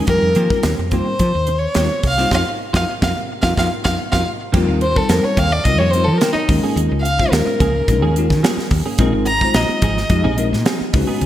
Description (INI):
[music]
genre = electric jazz fusion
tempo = 108 BPM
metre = 4/4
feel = straight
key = F minor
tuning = A4 = 442 Hz
[part]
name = bell-like tine electric piano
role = accompaniment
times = 0.0-11.3 s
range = G3 to Db5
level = -23 LUFS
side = left 3 dB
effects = wide subtle chorus
[part]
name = clean electric guitar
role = stabs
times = 0.0-11.2 s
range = Eb3 to Ab4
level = -25 LUFS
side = right 3 dB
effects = analog chorus
[part]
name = warm violin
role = melody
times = 0.1-10.4 s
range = Eb4 to Bb5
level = -20 LUFS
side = equal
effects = digital delay
[part]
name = woody fretless electric bass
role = bass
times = 0.1-11.3 s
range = Ab1 to F3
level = -19 LUFS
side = equal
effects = none
[part]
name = crisp fusion drum kit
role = drums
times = 0.1-11.3 s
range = crash cymbal, hi-hat, kick drum, snare drum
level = -20 LUFS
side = equal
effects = none
[sound]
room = moderate lush hall reverb, RT60 1.9 s, small room ambience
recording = bright 1980s-style digital production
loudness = -14 LUFS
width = side -12 dB against mid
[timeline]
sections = 0.0-4.5 A section; 4.5-11.3 B section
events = band accent 2.3-4.5; violin solo 4.5-11.3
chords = 0.1 F9sus4; 6.5 Eb9sus4; 9.0 Bb9sus4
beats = | 0.09 0.64 1.20 1.76 | 2.32 2.88 3.43 3.99 | 4.55 5.10 5.66 6.22 | 6.77 7.33 7.88 8.44 | 8.99 9.55 10.11 10.66 | 11.21